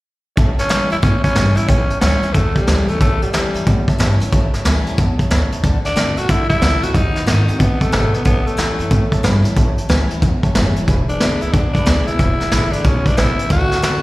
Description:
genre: rockabilly.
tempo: 183 BPM.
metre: 4/4.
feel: swing 64% on 8ths.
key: A mixolydian.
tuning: A4 = 440 Hz.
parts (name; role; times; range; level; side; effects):
dark upright piano; accompaniment; 0.4-14.0 s; B4 to B5; -31 LUFS; right 3 dB; slapback echo.
picked steel-string acoustic guitar; accompaniment; 0.4-14.0 s; E2 to F#4; -23 LUFS; left 2 dB; slapback echo.
upright bass; bass; 0.4-14.0 s; E1 to D3; -18 LUFS; equal; none.
vintage brush drum kit; drums; 0.4-13.9 s; hi-hat, kick drum, snare drum; -17 LUFS; equal; none.
raspy tenor saxophone; melody; 0.6-14.0 s; G3 to F#4; -20 LUFS; left 1 dB; slapback echo.
room: little or no reverb.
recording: live gig heard through the venue's PA, recital hall reverb.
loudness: -13 LUFS.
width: side -19 dB against mid.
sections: 0.4-14.0 A section.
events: upright piano fill 10.2-10.9.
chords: 0.4 A7; 5.6 D7; 6.9 D#dim7; 8.3 A7; 10.9 E7; 13.5 D7.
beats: | 0.37 0.70 1.03 1.36 | 1.69 2.02 2.35 2.68 | 3.01 3.34 3.67 3.99 | 4.32 4.65 4.98 5.31 | 5.63 5.96 6.29 6.62 | 6.95 7.27 7.60 7.93 | 8.26 8.59 8.91 9.24 | 9.57 9.90 10.22 10.55 | 10.88 11.21 11.54 11.87 | 12.19 12.52 12.85 13.18 | 13.51 13.83.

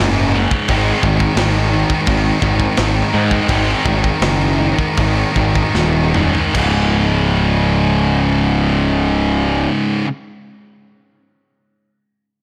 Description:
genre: heavy metal.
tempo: 74-88 BPM.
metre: 4/4.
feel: straight.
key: unclear.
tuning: A4 = 440 Hz.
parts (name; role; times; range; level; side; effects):
high-gain distorted guitar; riff; 0.0-10.1 s; C#2 to D#3; -22 LUFS; equal; distortion.
high-gain distorted guitar; riff; 0.0-10.1 s; C#2 to G#3; -22 LUFS; equal; distortion.
fuzz picked electric bass; bass; 0.0-9.7 s; C#1 to G#2; -19 LUFS; equal; overdrive.
tight metal drum kit; drums; 0.5-6.7 s; crash cymbal, hi-hat, kick drum, snare drum, toms; -24 LUFS; equal; soft clipping on kick.
room: little or no reverb.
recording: blown-out, overdriven recording, overdrive.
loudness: -15 LUFS.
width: mono.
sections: 0.0-6.5 A section; 6.5-9.8 B section.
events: slowing down 0.7-6.5; drum fill 5.7-6.5.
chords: 0.0 C#5; 0.7 G#5; 6.5 C#5.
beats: 0.00 | 0.68 1.37 2.07 2.77 | 3.49 4.22 4.97 5.75 | 6.55 7.36 8.18 8.99.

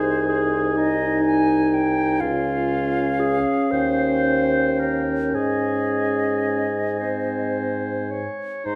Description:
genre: classical, slow romantic movement for wind quintet.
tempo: 36-42 BPM (dotted quarters).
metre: 6/8.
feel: rubato.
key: Ab major.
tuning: A4 = 437 Hz.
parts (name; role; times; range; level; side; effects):
bright concert flute; melody; 0.0-8.8 s; C5 to C6; -30 LUFS; equal; none.
warm oboe; second line; 0.0-8.8 s; G5 to Bb5; -32 LUFS; equal; none.
clear clarinet; accompaniment; 0.0-8.8 s; Eb4 to Db5; -27 LUFS; equal; none.
mellow French horn; accompaniment; 0.0-8.8 s; C4 to Eb4; -28 LUFS; equal; none.
dark bassoon; bass; 0.0-8.8 s; C2 to Ab2; -29 LUFS; equal; none.
room: wet recital hall reverb, RT60 1.4 s.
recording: none.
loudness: -22 LUFS.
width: mono.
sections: 0.0-8.7 A section.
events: none.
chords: 0.0 Ab/C; 2.2 Db; 3.7 Eb9; 5.4 Ab.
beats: 0.77 | 2.21 3.73 | 5.35 7.00 | 8.66.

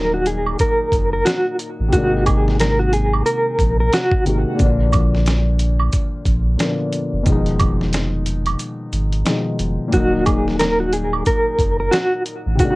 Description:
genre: hip hop, boom-bap hip-hop.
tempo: 90 BPM.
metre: 4/4.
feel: swing 61% on 16ths.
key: Eb harmonic minor.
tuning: A4 = 436 Hz.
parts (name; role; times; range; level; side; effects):
mellow electric guitar; melody; 0.0-4.2, 9.9-12.8 s; Gb4 to Bb4; -19 LUFS; equal; tremolo, high-pass filter, low-pass filter, cassette tape, analog delay.
dark grand piano; accompaniment; 0.0-12.8 s; Bb2 to Gb4; -22 LUFS; left 2 dB; cassette tape, high-pass filter, low-pass filter.
warm sub bass; bass; 0.0-12.8 s; Eb1 to Bb1; -20 LUFS; equal; none.
dusty soul sampler-style drum kit; drums; 0.3-12.8 s; hi-hat, kick drum, snare drum; -20 LUFS; equal; cassette tape.
maracas and woodblock; percussion; 0.3-12.8 s; none; -26 LUFS; right 5 dB; none.
room: little or no reverb.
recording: home recording on cassette.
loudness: -16 LUFS.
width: side -22 dB against mid.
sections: 0.0-12.8 A section.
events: break 8.6-9.9.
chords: 0.0 Ebm; 1.9 Abadd9; 4.6 Bb; 7.3 Fm7b5; 9.9 Ebm.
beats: 0.59 1.26 | 1.93 2.60 3.26 3.93 | 4.59 5.26 5.93 6.59 | 7.26 7.93 8.60 9.26 | 9.93 10.60 11.26 11.93 | 12.60.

